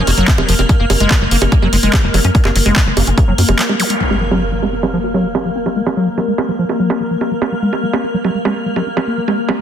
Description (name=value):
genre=psychedelic trance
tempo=145 BPM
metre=4/4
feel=straight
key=F phrygian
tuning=A4 = 440 Hz
part: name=swarming drone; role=sustained chords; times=0.0-9.6 s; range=Bb3 to Bb4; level=-20 LUFS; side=left 2 dB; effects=built-in reverb, sidechain pumping
part: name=liquid acid bass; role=riff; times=0.0-9.6 s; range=F3 to Gb4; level=-19 LUFS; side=equal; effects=chorus, auto-pan, sidechain pumping, digital delay
part: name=tight sequencer bass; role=bass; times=0.0-3.5 s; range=F1 to Gb2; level=-15 LUFS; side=equal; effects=none
part: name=techno drum kit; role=drums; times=0.1-9.6 s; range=bongos, handclaps, hi-hat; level=-19 LUFS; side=right 4 dB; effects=overdrive, low-pass filter on hats, low-pass filter on perc, low-pass filter on snare
part: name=electronic kick drum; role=drums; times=0.3-3.3 s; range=none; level=-13 LUFS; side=equal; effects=none
part: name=zap and impact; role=sound effects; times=3.8-5.7 s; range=none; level=-22 LUFS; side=equal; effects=none
room=light reverb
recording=dense, heavily limited modern master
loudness=-12 LUFS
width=side -9 dB against mid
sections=0.0-4.0 A section; 4.0-9.6 B section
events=break 3.6-4.0; impact 4.0-5.7; filter sweep on drum 4.0-9.6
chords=0.0 F5; 0.7 Gb5; 4.0 F5; 7.3 Gb5